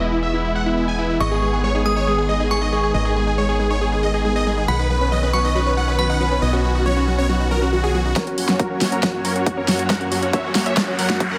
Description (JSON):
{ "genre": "uplifting trance", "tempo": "138 BPM", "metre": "4/4", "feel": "straight", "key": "unclear", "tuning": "A4 = 440 Hz", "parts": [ { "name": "supersaw chords", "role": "melody", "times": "0.0-11.4 s", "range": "E4 to G#5", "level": "-25 LUFS", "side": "equal", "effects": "sidechain pumping, low-pass filter, tape echo" }, { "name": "supersaw pad", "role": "sustained chords", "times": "0.0-11.4 s", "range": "F#2 to C#5", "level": "-27 LUFS", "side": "equal", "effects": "sidechain pumping, low-pass filter" }, { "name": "solid FM bass", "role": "bass", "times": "0.0-8.1 s", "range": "E1 to B1", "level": "-24 LUFS", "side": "equal", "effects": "sidechain pumping" }, { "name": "glassy synth bell", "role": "second line", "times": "1.2-6.4 s", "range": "B5 to D#6", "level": "-29 LUFS", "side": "equal", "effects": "chorus, phaser, tape echo" }, { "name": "tight sequenced synth", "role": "arpeggios", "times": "1.2-11.4 s", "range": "F#3 to G#4", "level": "-29 LUFS", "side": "equal", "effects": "chorus, phaser, cassette tape, sidechain pumping, tape echo" }, { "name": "swell and riser", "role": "sound effects", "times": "7.5-11.4 s", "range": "none", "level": "-33 LUFS", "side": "equal", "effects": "none" }, { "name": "big-room dance drum kit", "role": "drums", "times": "8.2-11.3 s", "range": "hi-hat, snare drum", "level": "-24 LUFS", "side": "equal", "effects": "overdrive, sidechain pumping on hats" }, { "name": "electronic kick drum", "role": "drums", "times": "8.2-11.3 s", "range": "none", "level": "-26 LUFS", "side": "equal", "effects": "overdrive, high-pass filter on kick" } ], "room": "light reverb, digital ambience", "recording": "high-pass filter", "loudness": "-20 LUFS", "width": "mono", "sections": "0.0-8.2 A section; 8.2-11.4 B section", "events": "filter sweep on supersaw synth 0.0-8.2, 8.2-11.4; swell 7.5-8.2; build-up 8.2-11.4; drum fill 8.2-11.4", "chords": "0.0 E; 1.2 G#m; 4.7 Badd9; 8.2 F#" }